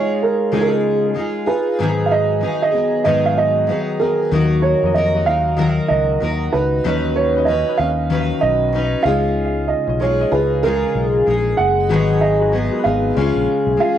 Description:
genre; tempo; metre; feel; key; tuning
acoustic pop; 95 BPM; 4/4; swing 60% on 16ths; unclear; A4 = 440 Hz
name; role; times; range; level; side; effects
dark upright piano; melody; 0.0-14.0 s; Ab4 to Gb5; -19 LUFS; right 5 dB; cassette tape, analog delay
picked steel-string acoustic guitar; accompaniment; 0.0-14.0 s; Ab2 to B4; -18 LUFS; left 2 dB; double-tracked left and right, cassette tape
clear upright piano; accompaniment; 4.3-14.0 s; Ab3 to Eb5; -31 LUFS; left 9 dB; cassette tape
fingered electric bass; bass; 4.3-13.8 s; Gb1 to F2; -21 LUFS; left 2 dB; none
room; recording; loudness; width
moderate studio reverb, RT60 0.7 s; home recording on cassette; -15 LUFS; side -10 dB against mid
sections
0.0-14.0 A section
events
none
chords
0.0 Dbadd9; 1.8 Abm7; 4.3 Ebm; 6.9 Badd9/D#; 9.1 Dbadd9; 11.9 Abm7; 13.2 Db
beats
0.54 1.17 | 1.80 2.43 3.06 3.70 | 4.33 4.96 5.59 6.22 | 6.85 7.48 8.11 8.74 | 9.38 10.01 10.64 11.27 | 11.90 12.53 13.16 13.79

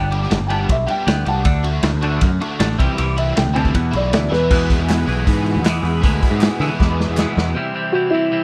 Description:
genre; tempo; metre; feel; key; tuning
indie rock; 157 BPM; 4/4; straight; unclear; A4 = 440 Hz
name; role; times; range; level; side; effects
dark upright piano; melody; 0.0-4.5, 7.9-8.4 s; E4 to A5; -23 LUFS; equal; slapback echo
twelve-string electric guitar; riff; 0.0-8.4 s; E2 to E4; -26 LUFS; equal; phaser
growling picked electric bass; bass; 0.0-7.5 s; G1 to D3; -22 LUFS; equal; overdrive
crunchy overdriven guitar; riff; 0.1-7.6 s; E2 to G#4; -29 LUFS; equal; ensemble chorus, slapback echo
raw garage drum kit; drums; 0.1-7.5 s; crash cymbal, hi-hat, kick drum, ride cymbal, snare drum; -22 LUFS; equal; none
bright tonewheel organ; sustained chords; 4.5-8.4 s; G4 to C6; -36 LUFS; equal; none
group handclap; percussion; 4.9-7.3 s; none; -33 LUFS; equal; none
room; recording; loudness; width
studio reverb; dry, close 1970s-style studio recording; -18 LUFS; mono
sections
0.0-4.5 A section; 4.5-7.6 B section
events
upright piano solo 0.0-4.5; drum fill 4.3, 6.8-7.6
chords
0.0 G; 1.5 D; 2.8 C; 3.7 E; 7.6 C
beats
0.31 0.69 1.07 | 1.46 1.84 2.22 2.60 | 2.98 3.36 3.74 4.13 | 4.51 4.89 5.27 5.65 | 6.03 6.41 6.79 7.18 | 7.56 7.94 8.32

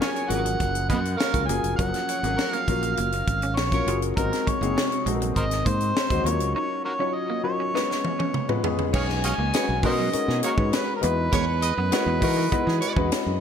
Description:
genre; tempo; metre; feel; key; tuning
polished 1980s jazz-funk pop; 101 BPM; 4/4; straight; F# major; A4 = 440 Hz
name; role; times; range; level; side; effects
overdriven harmonica; melody; 0.0-13.4 s; F#4 to G#5; -27 LUFS; right 1 dB; none
warm concert grand piano; accompaniment; 0.0-13.4 s; B#2 to C#5; -28 LUFS; left 4 dB; analog chorus
semi-hollow electric guitar; riff; 0.0-13.1 s; F#3 to E#4; -35 LUFS; right 6 dB; lush chorus
tight funk drum kit; drums; 0.0-13.3 s; crash cymbal, hi-hat, kick drum, snare drum, toms; -27 LUFS; equal; gated reverb
clear horn section; second line; 0.1-4.0, 8.9-12.9 s; A#3 to D#5; -33 LUFS; right 5 dB; none
modern bright fingered electric bass; bass; 0.3-13.4 s; E#1 to E3; -27 LUFS; right 1 dB; none
room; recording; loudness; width
moderate plate reverb, RT60 2.2 s; bright 1980s-style digital production; -22 LUFS; side -8 dB against mid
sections
0.0-8.9 A section; 8.9-13.4 B section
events
drum fill 7.8-8.9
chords
0.0 F#maj7; 4.2 G#9; 6.3 D#m9; 7.8 C#7; 8.9 B69; 11.0 Emaj9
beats
0.01 0.61 1.20 | 1.80 2.39 2.99 3.58 | 4.18 4.77 5.37 5.96 | 6.56 7.16 7.75 8.35 | 8.94 9.54 10.13 10.73 | 11.33 11.92 12.52 13.12

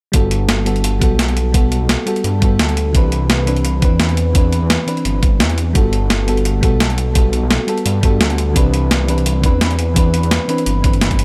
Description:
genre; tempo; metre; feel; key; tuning
liquid drum and bass; 171 BPM; 4/4; swing 54% on 16ths; G major; A4 = 440 Hz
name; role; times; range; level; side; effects
mellow FM electric piano; accompaniment; 0.1-11.2 s; E3 to B4; -22 LUFS; equal; chorus, digital delay
dark detuned saw bass; bass; 0.1-11.2 s; G1 to G2; -20 LUFS; equal; none
breakbeat sampler-style drum kit; drums; 0.1-11.2 s; hi-hat, snare drum; -21 LUFS; equal; overdrive
electronic kick drum; drums; 0.1-11.2 s; none; -16 LUFS; equal; none
room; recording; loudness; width
little or no reverb; none; -15 LUFS; mono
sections
0.1-11.2 A section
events
none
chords
0.1 Gmaj9; 2.9 Cmaj9; 5.8 Gmaj9; 8.6 Cmaj9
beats
| 0.14 0.49 0.84 1.19 | 1.54 1.89 2.24 2.60 | 2.95 3.30 3.65 4.00 | 4.35 4.70 5.05 5.40 | 5.75 6.10 6.46 6.81 | 7.16 7.51 7.86 8.21 | 8.56 8.91 9.26 9.61 | 9.96 10.31 10.66 11.02

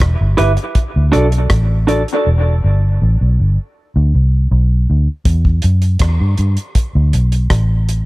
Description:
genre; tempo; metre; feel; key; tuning
dub reggae; 80 BPM; 4/4; straight; E minor; A4 = 440 Hz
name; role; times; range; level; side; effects
vintage muted fingered electric bass; bass; 0.0-8.0 s; E1 to G2; -12 LUFS; equal; none
damped 70s drum kit; drums; 0.0-8.1 s; hi-hat, kick drum, rim click; -17 LUFS; equal; none
mellow electric guitar; accompaniment; 0.4-2.0 s; D4 to E5; -18 LUFS; right 1 dB; wide subtle chorus, dub echo
room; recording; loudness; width
little or no reverb; echo-heavy mix; -12 LUFS; side -20 dB against mid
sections
0.0-8.1 A section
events
part muted 2.3-5.3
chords
0.0 Em; 0.8 D; 2.3 Em; 3.8 Bm; 5.3 Em; 6.8 D5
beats
0.00 0.75 1.50 | 2.25 3.00 3.75 4.50 | 5.25 6.00 6.75 7.51

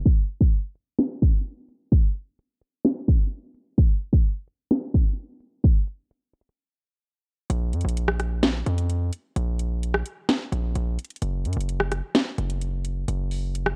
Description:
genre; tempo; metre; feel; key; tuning
hip hop, trap; 129 BPM; 4/4; half-time; unclear; A4 = 440 Hz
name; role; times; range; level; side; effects
hard-hitting 808-style bass; bass; 0.0, 7.5-13.8 s; Gb1 to Gb2; -28 LUFS; equal; none
house drum kit; drums; 0.1-13.8 s; hi-hat, kick drum, rim click, snare drum; -23 LUFS; equal; none
room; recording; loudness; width
little or no reverb; worn, warbling old tape, cassette tape, warbly pitch drift, low-pass filter; -25 LUFS; mono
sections
0.1-7.5 A section; 7.5-13.8 B section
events
filter sweep 0.1-7.5; break 6.6-7.5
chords
none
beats
| 0.06 0.52 0.99 1.45 | 1.92 2.38 2.85 3.31 | 3.78 4.24 4.71 5.17 | 5.64 6.10 6.57 7.03 | 7.50 7.96 8.43 8.89 | 9.36 9.82 10.29 10.76 | 11.22 11.69 12.15 12.62 | 13.08 13.55

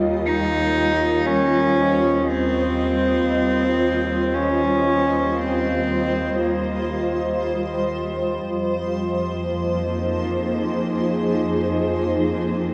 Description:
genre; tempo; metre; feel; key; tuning
ambient; free time; none; none; unclear; A4 = 440 Hz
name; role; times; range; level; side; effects
granular cloud pad; sustained chords; 0.0-12.7 s; F3 to Eb5; -24 LUFS; equal; built-in reverb
clear symphonic cello section; bass; 0.0-12.7 s; Eb2 to F2; -31 LUFS; equal; none
rich cello; melody; 0.3-7.9 s; Bb3 to Eb4; -23 LUFS; equal; delay
room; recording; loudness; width
wet concert hall reverb, RT60 2.0 s; worn, warbling old tape, cassette tape, warbly pitch drift; -21 LUFS; mono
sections
0.0-12.7 A section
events
none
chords
0.0 Eb; 8.5 Fm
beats
free time

